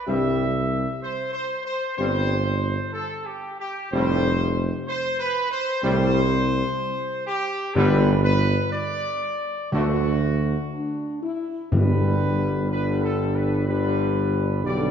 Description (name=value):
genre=classical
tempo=62 BPM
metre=4/4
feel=straight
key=G major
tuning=A4 = 442 Hz
part: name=dark trumpet section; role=melody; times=0.0-14.9 s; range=F#4 to E5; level=-27 LUFS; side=equal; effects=none
part: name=clear trombone section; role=sustained chords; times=0.1-14.9 s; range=G2 to A3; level=-29 LUFS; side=equal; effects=none
part: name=dark French horn section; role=sustained chords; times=0.1-14.9 s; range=B3 to G4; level=-29 LUFS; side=left 6 dB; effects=none
part: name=warm tuba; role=bass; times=0.1-14.9 s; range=F1 to D2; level=-24 LUFS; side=right 2 dB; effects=none
part: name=timpani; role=percussion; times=7.8-13.2 s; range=G2 to D3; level=-25 LUFS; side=left 1 dB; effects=none
room=wet scoring stage reverb, RT60 1.7 s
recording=dark, warm production, nothing above 8.0 kHz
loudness=-21 LUFS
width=side -8 dB against mid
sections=0.0-14.9 A section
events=none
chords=0.1 C; 3.9 Fadd9; 7.8 G; 9.7 D; 11.7 G